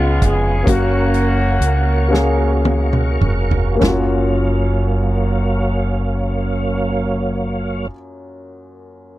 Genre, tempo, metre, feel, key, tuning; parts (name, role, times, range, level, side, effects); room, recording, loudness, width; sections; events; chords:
slow gospel; 32-46 BPM (dotted quarters); 6/8; straight; F# major; A4 = 441 Hz
mellow horn section; melody; 0.0-2.7 s; G#3 to G#4; -22 LUFS; equal; tape echo
warm upright piano; accompaniment; 0.0-9.2 s; F#2 to E#5; -22 LUFS; left 2 dB
tonewheel organ; sustained chords; 0.0-7.9 s; F#3 to C#6; -23 LUFS; right 2 dB; slow rotary speaker, chorus vibrato
deep dub fingered electric bass; bass; 0.0-7.9 s; E#1 to C#2; -18 LUFS; equal
natural country drum kit; drums; 0.2-4.1 s; hi-hat, kick drum, snare drum, toms; -19 LUFS; right 1 dB
little or no reverb; dry, close 1970s-style studio recording; -15 LUFS; side -16 dB against mid
0.0-3.8 A section; 3.8-7.5 B section
slowing down 0.0-3.8; drum fill 2.1-3.8
0.0 C#7; 0.7 F#maj7